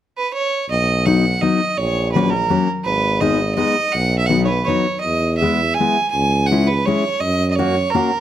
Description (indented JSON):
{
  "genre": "alpine folk, alpine dance band",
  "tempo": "166 BPM",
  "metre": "3/4",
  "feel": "rubato",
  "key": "B major",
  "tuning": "A4 = 439 Hz",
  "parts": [
    { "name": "clear fiddle", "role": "melody", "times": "0.2-8.2 s", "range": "A#4 to G#5", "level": "-19 LUFS", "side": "right 4 dB", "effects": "none" },
    { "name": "warm tuba", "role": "bass", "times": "0.7-7.9 s", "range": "G#1 to F#2", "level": "-20 LUFS", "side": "equal", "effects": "none" },
    { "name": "fingerpicked steel-string acoustic guitar", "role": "accompaniment", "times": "1.1-8.1 s", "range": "F#3 to F#4", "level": "-20 LUFS", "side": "left 4 dB", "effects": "none" }
  ],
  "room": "light reverb",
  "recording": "close, detailed microphones",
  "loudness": "-15 LUFS",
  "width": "side -11 dB against mid",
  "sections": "0.7-8.2 A section",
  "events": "none",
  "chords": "0.0 N.C.; 0.7 B; 1.8 F#/A#; 2.9 G#m; 3.9 B; 5.0 E; 6.1 C#m; 7.2 F#"
}